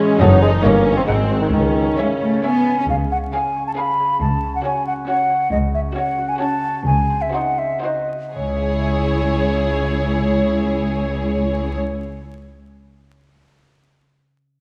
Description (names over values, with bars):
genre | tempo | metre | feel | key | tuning
cinematic, playful, whimsical film cue | 114-140 BPM | 3/4 | straight | C# minor | A4 = 441 Hz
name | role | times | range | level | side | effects
rich studio violin section | melody | 0.0-11.8 s | B#4 to F#5 | -31 LUFS | equal | none
warm studio violin section | second line | 0.0-11.8 s | C#4 to C#5 | -32 LUFS | equal | none
dark bassoon | accompaniment | 0.0-2.4 s | C#3 to B#3 | -21 LUFS | equal | none
rich studio viola section | accompaniment | 0.0-11.8 s | B#3 to E4 | -30 LUFS | equal | none
warm French horn section | sustained chords | 0.0-2.4 s | C#3 to B#3 | -28 LUFS | equal | none
concert harp | arpeggios | 0.0-12.3 s | F#2 to G#5 | -29 LUFS | equal | none
clear tuba | bass | 0.2-1.9 s | F#1 to C#2 | -26 LUFS | equal | none
rich chamber double bass section | bass | 0.2-11.8 s | F#1 to C#2 | -25 LUFS | equal | none
rich studio cello section | bass | 0.2-11.8 s | C#2 to C#4 | -24 LUFS | equal | none
mellow hollow silver concert flute | second line | 2.4-11.8 s | C#5 to B5 | -24 LUFS | equal | none
room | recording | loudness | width
moderate scoring stage reverb, RT60 2.0 s | vinyl crackle | -19 LUFS | mono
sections
0.0-2.9 A section; 2.9-8.3 B section; 8.3-11.5 C section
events
slowing down 4.9-8.3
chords
0.2 D#dim/F#; 0.6 D#7/G; 1.1 G#7; 1.5 C#m; 2.9 C#7; 4.2 F#5/C#; 6.9 G#7b13; 8.3 C#m